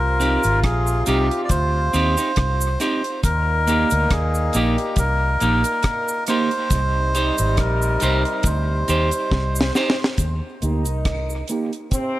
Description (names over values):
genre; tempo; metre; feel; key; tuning
dub reggae; 69 BPM; 4/4; swing 55% on 16ths; Eb major; A4 = 442 Hz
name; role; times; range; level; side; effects
melodica; melody; 0.0-9.7 s; G4 to D5; -23 LUFS; equal; dub echo
clear trombone section; second line; 0.0-12.2 s; Bb2 to F4; -28 LUFS; right 1 dB; high-pass filter, dub echo
vintage muted fingered electric bass; bass; 0.0-11.4 s; Ab1 to Eb2; -21 LUFS; equal; none
clean electric guitar; accompaniment; 0.2-11.7 s; Bb3 to C5; -25 LUFS; right 2 dB; high-pass filter, low-pass filter, dub echo
deep reggae drum kit; drums; 0.2-12.1 s; hi-hat, kick drum, rim click, snare drum; -23 LUFS; equal; none
cabasa; percussion; 0.2-12.2 s; none; -32 LUFS; right 2 dB; high-pass filter on perc
room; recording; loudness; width
light reverb, studio reverb; none; -18 LUFS; side -15 dB against mid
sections
0.0-10.2 A section; 10.2-12.2 B section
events
drum fill 9.3-10.2; filter sweep on clean electric guitar 10.2-12.2; filter sweep 10.2-12.2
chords
0.0 Cm; 3.2 Eb; 6.7 Cm; 10.2 Eb